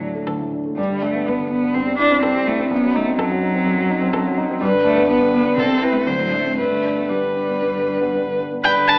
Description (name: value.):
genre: quick classical-period movement for piano trio.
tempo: 114-127 BPM.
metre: 4/4.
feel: rubato.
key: G major.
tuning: A4 = 440 Hz.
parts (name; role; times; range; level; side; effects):
rich cello; second line; 0.0-9.0 s; F#3 to B4; -20 LUFS; equal; none.
warm grand piano; accompaniment; 0.0-9.0 s; C2 to E4; -21 LUFS; equal; none.
warm violin; melody; 0.3-9.0 s; A4 to A5; -19 LUFS; left 1 dB; none.
room: wet recital hall reverb, RT60 1.3 s.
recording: AM radio sound.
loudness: -16 LUFS.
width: side -31 dB against mid.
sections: 0.0-8.6 A section.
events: none.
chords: 0.0 D; 0.8 G; 1.7 Am7/G; 2.7 F#dim7; 4.6 G; 5.6 Am/C; 6.1 D7; 6.6 G.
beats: 0.27 | 0.78 1.27 1.75 2.23 | 2.71 3.18 3.66 4.13 | 4.61 5.09 5.58 6.07 | 6.58 7.10 7.62 8.14 | 8.64.